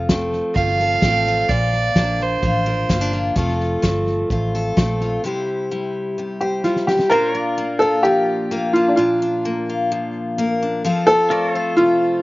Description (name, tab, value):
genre	honky-tonk and classic country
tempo	128 BPM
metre	4/4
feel	straight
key	unclear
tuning	A4 = 438 Hz
part	picked steel-string acoustic guitar	accompaniment	0.0-12.2 s	Bb2 to C5	-21 LUFS	left 2 dB	slapback echo
part	vintage muted fingered electric bass	bass	0.0-5.2 s	F1 to Bb1	-23 LUFS	equal	none
part	unplugged drum kit	drums	0.1-7.1 s	hi-hat, kick drum, snare drum	-21 LUFS	equal	none
part	rich fiddle	second line	0.5-3.2 s	C5 to F5	-20 LUFS	right 4 dB	slapback echo
part	clear upright piano	melody	6.4-12.2 s	D4 to Bb4	-16 LUFS	equal	none
part	pedal steel guitar	sustained chords	7.1-12.2 s	F4 to D5	-27 LUFS	equal	lush chorus
room	little or no reverb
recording	recorded outdoors, with no room sound, nothing above 7.5 kHz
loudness	-16 LUFS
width	side -19 dB against mid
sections	0.0-7.1 A section; 7.1-12.2 B section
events	fiddle solo 0.0-7.1; drum fill 6.6-7.1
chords	0.0 F; 1.5 Bb; 3.4 F; 5.2 C; 7.1 Bb; 10.8 F